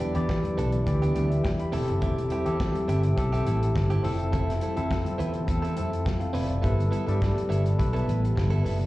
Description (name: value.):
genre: disco.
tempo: 104 BPM.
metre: 4/4.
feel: straight.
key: G major.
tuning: A4 = 440 Hz.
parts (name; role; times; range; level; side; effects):
barky tine electric piano; accompaniment; 0.0-8.9 s; E3 to B5; -31 LUFS; left 2 dB; overdrive, medium tremolo, slapback echo.
direct-recorded clean electric guitar; accompaniment; 0.0-8.8 s; B3 to B4; -34 LUFS; right 4 dB; spring reverb, slapback echo.
mellow French horn section; sustained chords; 0.0-8.9 s; C3 to G4; -36 LUFS; equal; none.
modern studio drum kit; drums; 0.0-8.9 s; hi-hat, kick drum, snare drum; -32 LUFS; equal; vintage 12-bit sampler grit.
congas; percussion; 0.0-8.8 s; none; -37 LUFS; left 2 dB; none.
vintage muted fingered electric bass; bass; 0.2-8.9 s; E1 to G2; -26 LUFS; equal; none.
room: small room ambience.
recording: live gig heard through the venue's PA, cassette tape, club reverb.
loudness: -23 LUFS.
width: side -17 dB against mid.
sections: 0.0-8.9 A section.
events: none.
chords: 0.0 Em7; 1.7 Am7/E; 4.0 Fmaj7; 6.6 G69.